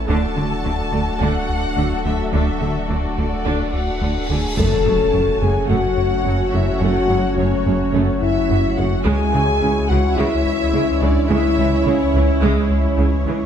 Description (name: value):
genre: cinematic, hybrid orchestral and electronic film score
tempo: 107 BPM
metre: 4/4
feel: straight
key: F# minor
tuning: A4 = 440 Hz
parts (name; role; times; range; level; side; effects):
- warm symphonic violin section; melody; 0.0-13.5 s; C#5 to A5; -31 LUFS; left 3 dB; none
- dark symphonic violin section; second line; 0.0-12.4 s; F#4 to A5; -26 LUFS; left 2 dB; none
- mellow French horn section; sustained chords; 0.0-12.4 s; F#3 to A4; -23 LUFS; left 3 dB; none
- warm analog pad; sustained chords; 0.0-13.5 s; G#3 to C#5; -27 LUFS; left 1 dB; chorus
- warm sub bass; bass; 0.0-13.5 s; D1 to C#2; -24 LUFS; equal; none
- clear symphonic viola section; accompaniment; 0.1-13.5 s; C#3 to F#4; -26 LUFS; right 1 dB; none
- rubbery square bass; riff; 0.1-13.4 s; C#2 to F#3; -23 LUFS; left 1 dB; none
- rich symphonic cello section; bass; 0.1-13.4 s; F#2 to D3; -27 LUFS; right 4 dB; none
- rich symphonic double bass section; bass; 0.1-13.3 s; F#1 to D2; -26 LUFS; right 4 dB; none
- cymbal swell and impact; sound effects; 3.8-6.8 s; none; -27 LUFS; equal; none
- warm trombone section; sustained chords; 4.6-13.4 s; E3 to C#4; -27 LUFS; right 3 dB; none
room: moderate scoring stage reverb, RT60 1.9 s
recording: none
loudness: -16 LUFS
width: side -8 dB against mid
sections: 0.0-4.6 A section; 4.6-13.5 A section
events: cymbal swell 3.8-4.6; impact 4.6-6.8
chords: 0.1 D; 4.6 F#madd9; 9.1 C#m